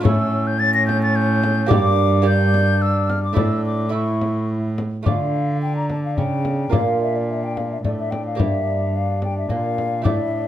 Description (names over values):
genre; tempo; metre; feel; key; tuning
classical, renaissance-style consort dance; 108 BPM; 3/4; straight; D harmonic minor; A4 = 440 Hz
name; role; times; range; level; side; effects
mellow hollow silver concert flute; melody; 0.0-10.5 s; D5 to Bb6; -24 LUFS; left 4 dB; none
bright trombone; accompaniment; 0.0-10.5 s; C#4 to E4; -27 LUFS; left 2 dB; none
lute; accompaniment; 0.0-10.5 s; G2 to E5; -25 LUFS; right 6 dB; none
rich cello; bass; 0.0-10.5 s; G2 to D3; -21 LUFS; right 1 dB; none
frame drum; percussion; 0.1-10.3 s; none; -21 LUFS; left 3 dB; none
room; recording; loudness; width
moderate stone room reverb, RT60 0.9 s; none; -17 LUFS; side -11 dB against mid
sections
0.0-5.1 A section; 5.1-10.5 B section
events
none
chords
0.0 A; 1.7 Gm; 3.4 Asus4; 3.9 A; 5.1 Dm; 6.7 Bb; 8.4 Gm